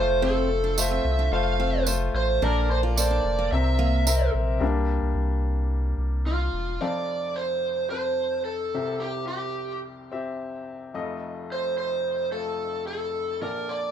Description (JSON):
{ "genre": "piano-driven pop", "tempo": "109 BPM", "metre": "4/4", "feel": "straight", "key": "F major", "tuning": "A4 = 440 Hz", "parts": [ { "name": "lead guitar through a small cranked amp", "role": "melody", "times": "0.0-13.9 s", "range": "F4 to F5", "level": "-27 LUFS", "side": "right 2 dB", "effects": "overdrive" }, { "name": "clear baby grand piano", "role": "accompaniment", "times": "0.0-13.9 s", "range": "F1 to F5", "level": "-30 LUFS", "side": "left 5 dB", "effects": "none" }, { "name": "warm sub bass", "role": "bass", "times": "0.0-6.8 s", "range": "E1 to C2", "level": "-24 LUFS", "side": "equal", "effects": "none" }, { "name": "picked steel-string acoustic guitar", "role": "riff", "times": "0.2-4.0 s", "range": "Bb3 to F4", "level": "-30 LUFS", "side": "right 4 dB", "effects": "none" }, { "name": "tambourine", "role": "percussion", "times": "0.8-4.2 s", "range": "none", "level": "-27 LUFS", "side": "right 8 dB", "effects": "none" } ], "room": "moderate studio reverb, RT60 0.6 s", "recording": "rough home demo mix", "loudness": "-23 LUFS", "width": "side -9 dB against mid", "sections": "0.0-4.6 A section; 4.6-6.8 B section; 6.8-13.9 C section", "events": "grand piano solo 4.6-6.8", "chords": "0.0 F; 2.4 Bbmaj7; 3.5 C7; 4.6 C7(no3); 6.8 F; 8.7 C; 10.9 F7", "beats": "| 0.22 0.77 1.32 1.87 | 2.42 2.97 3.52 4.07 | 4.62 5.16 5.71 6.26 | 6.81 7.36 7.91 8.46 | 9.01 9.56 10.11 10.66 | 11.21 11.76 12.31 12.87 | 13.41" }